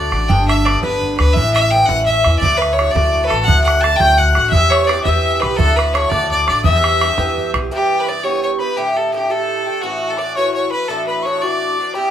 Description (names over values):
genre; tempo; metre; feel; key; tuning
celtic folk, Celtic jig; 113 BPM (dotted quarters); 6/8; straight; unclear; A4 = 440 Hz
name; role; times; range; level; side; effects
bright fiddle; melody; 0.0-12.1 s; F#4 to A5; -17 LUFS; left 1 dB; none
Irish bouzouki; accompaniment; 0.0-12.1 s; G2 to G4; -20 LUFS; right 1 dB; none
upright bass; bass; 0.0-7.7 s; G1 to E2; -18 LUFS; equal; none
bodhran; percussion; 0.1-7.6 s; none; -21 LUFS; right 3 dB; none
bright mid whistle; second line; 3.5-12.1 s; F#5 to A6; -22 LUFS; left 4 dB; none
room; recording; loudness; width
moderate studio reverb, RT60 0.6 s; none; -13 LUFS; side -10 dB against mid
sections
0.0-7.7 A section; 7.7-12.1 B section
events
none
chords
0.3 G; 1.4 A; 2.4 D; 4.5 Em; 5.6 D; 6.7 Em; 8.8 Gsus2; 9.8 A6; 10.9 Dadd9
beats
| 0.29 0.82 | 1.36 1.89 | 2.42 2.95 | 3.48 4.01 | 4.54 5.07 | 5.59 6.12 | 6.65 7.18 | 7.71 8.24 | 8.77 9.30 | 9.83 10.36 | 10.88 11.41 | 11.94